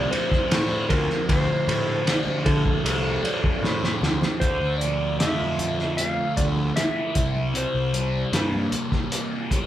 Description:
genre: psychedelic rock.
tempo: 77 BPM.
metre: 4/4.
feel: straight.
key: D minor.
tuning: A4 = 438 Hz.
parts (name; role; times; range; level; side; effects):
clean lap steel guitar; melody; 0.0-9.1 s; A4 to F5; -28 LUFS; equal; none.
thick fuzz guitar; riff; 0.0-9.7 s; C3 to E4; -27 LUFS; equal; distortion, phaser.
fuzz picked electric bass; bass; 0.0-8.7 s; C2 to D3; -27 LUFS; equal; overdrive.
pedal harmonium; drone; 0.0-4.5 s; D2 to A2; -39 LUFS; right 1 dB; none.
cloth-damped thuddy drum kit; drums; 0.1-9.7 s; hi-hat, kick drum, ride cymbal, snare drum; -25 LUFS; equal; none.
congas; percussion; 0.1-9.7 s; none; -38 LUFS; right 2 dB; none.
room: moderate large studio reverb, RT60 1.0 s.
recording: band playing live in one room.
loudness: -21 LUFS.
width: side -12 dB against mid.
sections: 0.0-4.4 A section; 4.4-9.7 B section.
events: drum fill 3.4-4.4.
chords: 0.0 F; 4.4 Dmadd9; 7.2 C7.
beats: 0.51 | 1.29 2.07 2.85 3.63 | 4.41 5.20 5.98 6.76 | 7.55 8.33 9.12.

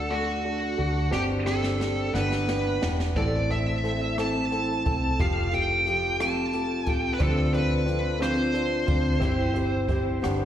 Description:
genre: six-eight pop ballad.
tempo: 59 BPM (dotted quarters).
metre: 6/8.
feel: straight.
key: C major.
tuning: A4 = 439 Hz.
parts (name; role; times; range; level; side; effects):
high-gain lead guitar; melody; 0.0-10.4 s; F#4 to A5; -28 LUFS; right 1 dB; distortion, slapback echo, tape echo.
warm upright piano; accompaniment; 0.0-10.4 s; A3 to A4; -30 LUFS; left 2 dB; slapback echo.
fingerpicked steel-string acoustic guitar; arpeggios; 0.0-10.4 s; G2 to A4; -31 LUFS; right 1 dB; slapback echo.
vintage muted fingered electric bass; bass; 0.0-10.4 s; E1 to D2; -29 LUFS; equal; none.
jazz brush drum kit; drums; 1.1-10.4 s; hi-hat, kick drum, rim click, snare drum; -30 LUFS; equal; none.
room: light reverb, small room ambience.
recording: live gig heard through the venue's PA, recital hall reverb.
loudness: -23 LUFS.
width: side -10 dB against mid.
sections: 0.0-10.4 A section.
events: drum fill 1.1-3.2.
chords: 0.0 D; 1.1 Gsus4; 2.1 G; 3.2 Am; 5.2 Fadd9; 7.2 Dm7; 9.2 C/G.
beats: 0.11 | 1.13 2.14 | 3.16 4.18 | 5.20 6.21 | 7.21 8.22 | 9.22 10.24.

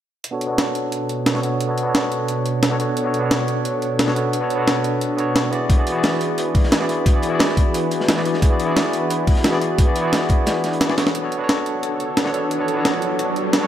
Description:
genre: liquid drum and bass.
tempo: 176 BPM.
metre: 4/4.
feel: straight.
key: B dorian.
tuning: A4 = 440 Hz.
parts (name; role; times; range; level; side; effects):
warm analog pad; sustained chords; 0.4-13.7 s; B2 to C#5; -24 LUFS; equal; chorus, vintage 12-bit sampler grit, sidechain pumping.
breakbeat sampler-style drum kit; drums; 0.2-13.6 s; hi-hat, rim click, snare drum; -22 LUFS; equal; none.
barky tine electric piano; accompaniment; 0.3-13.7 s; B3 to D5; -22 LUFS; equal; medium stereo tremolo, low-pass filter, dub echo.
crunchy breakbeat drum kit; drums; 5.7-11.1 s; hi-hat, snare drum; -27 LUFS; left 1 dB; high-pass filter on hats, high-pass filter on snare, high-pass filter on room.
electronic kick drum; drums; 5.7-10.4 s; none; -16 LUFS; equal; none.
dark detuned saw bass; bass; 11.1-13.7 s; B1; -48 LUFS; equal; none.
riser; sound effects; 12.0-13.7 s; none; -28 LUFS; right 1 dB; none.
room: moderate lush hall reverb, RT60 1.9 s.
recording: high-pass filter.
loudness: -17 LUFS.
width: side -10 dB against mid.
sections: 0.2-11.2 A section; 11.2-13.7 B section.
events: filter sweep on tine electric piano 0.2-11.2; filter sweep on analog synth pad 0.2-11.2; kick drops out 10.8-11.2; drum fill 10.9; build-up 11.2-13.7; riser 12.0-13.7.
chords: 0.2 Bm7; 5.5 E9; 11.2 Bm7.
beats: | 0.24 0.58 0.92 1.26 | 1.60 1.95 2.29 2.63 | 2.97 3.31 3.65 3.99 | 4.33 4.67 5.01 5.36 | 5.70 6.04 6.38 6.72 | 7.06 7.40 7.74 8.08 | 8.42 8.76 9.11 9.45 | 9.79 10.13 10.47 10.81 | 11.15 11.49 11.83 12.17 | 12.51 12.86 13.20 13.54.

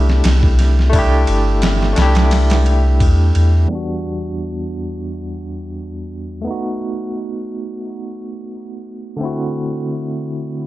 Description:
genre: trip hop.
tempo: 87 BPM.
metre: 4/4.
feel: swing 54% on 16ths.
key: E minor.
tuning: A4 = 440 Hz.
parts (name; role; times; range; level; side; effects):
barky tine electric piano; accompaniment; 0.0-10.7 s; E2 to G4; -21 LUFS; equal; medium stereo tremolo, tape echo.
soft dub sub bass; bass; 0.0-3.7 s; G1 to E2; -13 LUFS; equal; tube saturation.
trip hop sampler-style drum kit; drums; 0.1-3.5 s; kick drum, ride cymbal, snare drum; -18 LUFS; equal; small room reverb.
room: digital ambience.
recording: low-pass filter.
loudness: -14 LUFS.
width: side -16 dB against mid.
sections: 0.0-3.7 A section; 3.7-10.7 B section.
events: filter sweep 3.7-10.7.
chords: 0.0 C6; 3.7 Em7; 6.5 B7; 9.2 D7.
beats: 0.25 | 0.94 1.63 2.32 3.01 | 3.70 4.38 5.08 5.76 | 6.45 7.14 7.83 8.52 | 9.21 9.90 10.59.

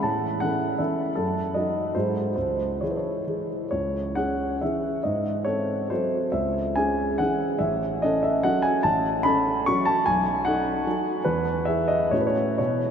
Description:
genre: classical, romantic triple-time dance for piano with dotted rhythms.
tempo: 117-173 BPM.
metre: 3/4.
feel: rubato.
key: C# minor.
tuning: A4 = 440 Hz.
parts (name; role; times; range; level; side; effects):
warm grand piano; solo; 0.0-12.9 s; A1 to C#6; -22 LUFS; equal; none.
room: wet huge ambient reverb, RT60 7.7 s.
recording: in a vast, echoing space.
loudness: -22 LUFS.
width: side -7 dB against mid.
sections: 0.0-3.7 A section; 3.7-12.9 B section.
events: none.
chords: 0.0 A; 1.2 D#dim/F#; 1.9 G#7; 2.4 C#m; 5.0 G#7b9; 6.3 C#m; 7.6 F#m/A; 10.1 B7; 11.2 E; 12.1 F#m/A.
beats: | 0.05 0.42 0.79 | 1.16 1.54 1.95 | 2.36 2.82 3.27 | 3.71 4.16 4.62 | 5.05 5.47 5.90 | 6.33 6.77 7.20 | 7.61 8.04 8.45 | 8.85 9.26 9.68 | 10.07 10.46 10.86 | 11.25 11.67 12.12 | 12.59.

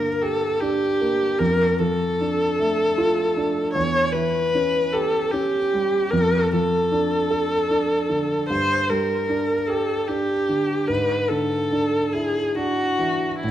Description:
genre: classical, romantic duo for viola and grand piano.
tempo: 50 BPM (dotted quarters).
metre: 12/8.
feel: rubato.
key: D minor.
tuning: A4 = 440 Hz.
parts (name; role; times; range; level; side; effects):
rich viola; melody; 0.0-13.5 s; E4 to C#5; -21 LUFS; equal; none.
warm grand piano; accompaniment; 0.0-13.5 s; E2 to A4; -24 LUFS; right 1 dB; none.
room: wet recital hall reverb, RT60 1.5 s.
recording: none.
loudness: -19 LUFS.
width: side -11 dB against mid.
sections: 0.0-13.5 A section.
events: none.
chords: 0.0 Gm; 1.4 Dm/F; 3.8 C#dim/E; 6.1 Dm/F; 8.5 Gm; 10.9 E7/G#.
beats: 0.22 1.40 2.58 | 3.75 4.93 6.12 7.30 | 8.49 9.68 10.89 12.13 | 13.43.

